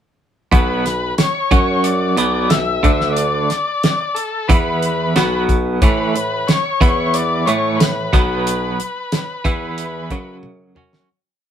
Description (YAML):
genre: psychedelic rock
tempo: 91 BPM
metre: 4/4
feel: straight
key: B minor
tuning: A4 = 440 Hz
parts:
  - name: overdriven combo organ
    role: melody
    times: 0.5-10.4 s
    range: A4 to E5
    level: -20 LUFS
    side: left 4 dB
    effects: none
  - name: twangy electric guitar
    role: riff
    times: 0.5-11.1 s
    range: F#2 to F#4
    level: -19 LUFS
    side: right 3 dB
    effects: tremolo
  - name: mellow bassoon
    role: bass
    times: 0.5-11.1 s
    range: B1 to A2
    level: -23 LUFS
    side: left 1 dB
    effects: none
  - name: damped 70s drum kit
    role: drums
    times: 0.5-11.1 s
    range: hi-hat, kick drum, snare drum, toms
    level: -16 LUFS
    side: equal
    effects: none
room: moderate studio reverb, RT60 0.6 s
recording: band playing live in one room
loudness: -15 LUFS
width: side -9 dB against mid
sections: 0.5-11.1 groove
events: fade-out 8.5-11.1; drum fill 10.4-11.1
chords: 0.5 B5; 1.5 F#5; 2.2 Bm; 2.8 D5; 4.5 E5; 5.2 B5; 5.8 A5; 6.8 E5; 7.5 A; 8.1 B5; 9.5 E5; 10.1 F#5